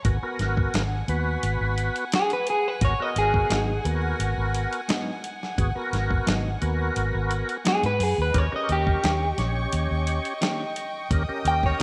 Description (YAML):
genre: straight-eighth soul blues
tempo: 87 BPM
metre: 4/4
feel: straight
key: G# minor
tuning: A4 = 440 Hz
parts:
  - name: electric guitar at the edge of break-up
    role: melody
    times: 0.0-11.8 s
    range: G4 to G5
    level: -27 LUFS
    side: equal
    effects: spring reverb
  - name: tonewheel organ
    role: accompaniment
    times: 0.0-11.8 s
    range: B3 to C#5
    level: -32 LUFS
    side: equal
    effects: overdrive, chorus vibrato, slow rotary speaker
  - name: rich studio string section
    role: sustained chords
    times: 0.0-11.8 s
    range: D#5 to D#6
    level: -37 LUFS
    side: equal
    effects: none
  - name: vintage muted fingered electric bass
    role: bass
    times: 0.0-11.8 s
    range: G#1 to G#2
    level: -28 LUFS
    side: equal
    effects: none
  - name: dusty soul sampler-style drum kit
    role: drums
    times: 0.0-11.8 s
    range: hi-hat, kick drum, snare drum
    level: -30 LUFS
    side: equal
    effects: none
  - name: clean electric guitar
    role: stabs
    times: 3.5-11.8 s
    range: G#2 to G4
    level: -36 LUFS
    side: equal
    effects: none
room: light reverb, digital ambience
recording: none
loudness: -25 LUFS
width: mono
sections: 0.0-11.8 A section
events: none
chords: 0.1 G#m7; 8.3 D#7